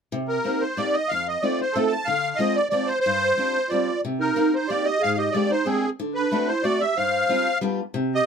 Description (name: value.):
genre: musette.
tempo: 184 BPM.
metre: 3/4.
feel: straight.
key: C minor.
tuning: A4 = 440 Hz.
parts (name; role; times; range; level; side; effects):
picked steel-string acoustic guitar; accompaniment; 0.1-8.2 s; F2 to G4; -26 LUFS; left 2 dB; none.
musette accordion; melody; 0.3-8.3 s; Ab4 to A5; -22 LUFS; right 1 dB; none.
warm clarinet; second line; 3.7-8.3 s; C4 to C5; -26 LUFS; right 4 dB; none.
room: light reverb.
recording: close, detailed microphones.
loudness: -21 LUFS.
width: side -6 dB against mid.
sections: 0.1-8.3 A section.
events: none.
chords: 0.1 Cm7; 1.1 F7; 2.1 Dm7b5; 3.1 G7sus4; 4.0 Cm7; 5.0 Abmaj9#11; 6.0 D7; 7.0 G7sus4; 7.6 G7.